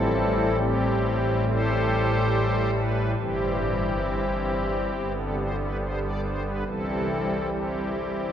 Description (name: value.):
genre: classical, chorale-style piece for pipe organ.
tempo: 69 BPM.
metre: 4/4.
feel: rubato.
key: C major.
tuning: A4 = 440 Hz.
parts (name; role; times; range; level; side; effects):
pipe organ, strings celeste; solo; 0.0-8.3 s; G1 to D5; -23 LUFS; equal; none.
room: wet cathedral reverb, RT60 4.7 s.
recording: recorded in a church or concert hall.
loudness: -23 LUFS.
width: side -9 dB against mid.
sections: 0.0-8.3 A section.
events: none.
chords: 0.0 Am7; 3.2 C/G; 4.9 G; 6.7 C.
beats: 0.60 1.47 2.32 | 3.18 4.07 4.95 5.81 | 6.68 7.52.